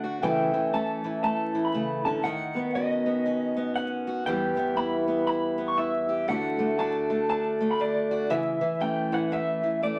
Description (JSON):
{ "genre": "acoustic folk duo or small band", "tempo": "119 BPM", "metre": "4/4", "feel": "swing 61% on 8ths", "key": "unclear", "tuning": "A4 = 439 Hz", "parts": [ { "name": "electric guitar through a small old amp", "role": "melody", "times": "0.0-10.0 s", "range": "D5 to C#6", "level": "-31 LUFS", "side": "equal", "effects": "tremolo" }, { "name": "fingerpicked steel-string acoustic guitar", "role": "accompaniment", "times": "0.0-10.0 s", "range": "E2 to G4", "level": "-32 LUFS", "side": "equal", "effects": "none" }, { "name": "picked old ladder-braced acoustic guitar", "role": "arpeggios", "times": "0.0-10.0 s", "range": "D#3 to G4", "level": "-32 LUFS", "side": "equal", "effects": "none" } ], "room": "wet studio reverb, RT60 0.7 s", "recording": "vinyl crackle", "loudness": "-27 LUFS", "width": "mono", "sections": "0.0-10.0 A section", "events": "none", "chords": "0.2 A/C#; 2.2 Badd9/D#; 4.3 Em; 6.3 D; 8.3 A/C#" }